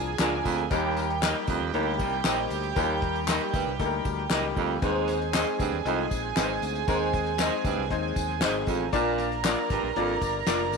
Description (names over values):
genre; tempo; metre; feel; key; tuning
uptempo 1960s-style soul; 117 BPM; 4/4; straight; Eb major; A4 = 442 Hz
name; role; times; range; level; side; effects
warm studio violin section; second line; 0.0-10.8 s; G4 to Bb5; -31 LUFS; right 12 dB; none
clear upright piano; accompaniment; 0.0-10.8 s; F3 to D5; -30 LUFS; left 12 dB; none
modern bright fingered electric bass; bass; 0.0-10.8 s; F1 to Eb2; -34 LUFS; equal; none
electric guitar at the edge of break-up; stabs; 0.2-10.6 s; D4 to Eb5; -34 LUFS; right 11 dB; none
cloth-damped thuddy drum kit; drums; 0.2-10.8 s; hi-hat, kick drum, snare drum; -31 LUFS; equal; none
handclaps and tambourine; percussion; 0.2-10.8 s; none; -33 LUFS; left 13 dB; none
breathy baritone saxophone; riff; 0.4-10.2 s; Eb2 to Bb2; -31 LUFS; right 11 dB; none
room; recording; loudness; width
moderate echo chamber reverb, RT60 1.6 s, small room ambience; 1960s-style stereo with parts hard left and right; -24 LUFS; side -4 dB against mid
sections
0.0-10.8 A section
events
none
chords
0.0 Bb; 0.7 Eb; 4.8 Ab; 8.9 Bb